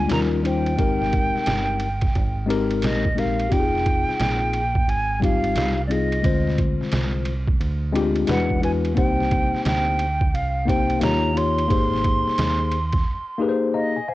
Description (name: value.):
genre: hip hop, jazz-hop.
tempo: 88 BPM.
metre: 4/4.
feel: swing 64% on 16ths.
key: unclear.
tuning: A4 = 439 Hz.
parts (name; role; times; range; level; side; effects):
hollow concert flute; melody; 0.0-14.1 s; D5 to C6; -25 LUFS; right 2 dB; cassette tape.
mellow tine electric piano; accompaniment; 0.0-14.1 s; D3 to Bb5; -23 LUFS; left 4 dB; medium stereo tremolo, cassette tape.
deep dub fingered electric bass; bass; 0.0-13.0 s; F1 to E2; -25 LUFS; right 1 dB; transformer saturation.
trip hop sampler-style drum kit; drums; 0.1-13.0 s; hi-hat, kick drum, ride cymbal, snare drum; -25 LUFS; right 1 dB; cassette tape.
room: light reverb, digital ambience.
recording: home recording on cassette.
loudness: -19 LUFS.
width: side -16 dB against mid.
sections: 0.0-14.1 A section.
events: break 13.1-14.1; tine electric piano fill 13.4-14.1.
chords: 0.1 Eb9; 0.8 Abmaj9; 3.5 Fm9; 6.2 Dm7b5; 8.3 E9; 9.0 Cm7; 11.0 Eb9; 11.7 Abmaj9.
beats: 0.11 | 0.79 1.47 2.15 2.83 | 3.52 4.20 4.88 5.56 | 6.24 6.92 7.61 8.29 | 8.97 9.65 10.33 11.02 | 11.70 12.38 13.06 13.74.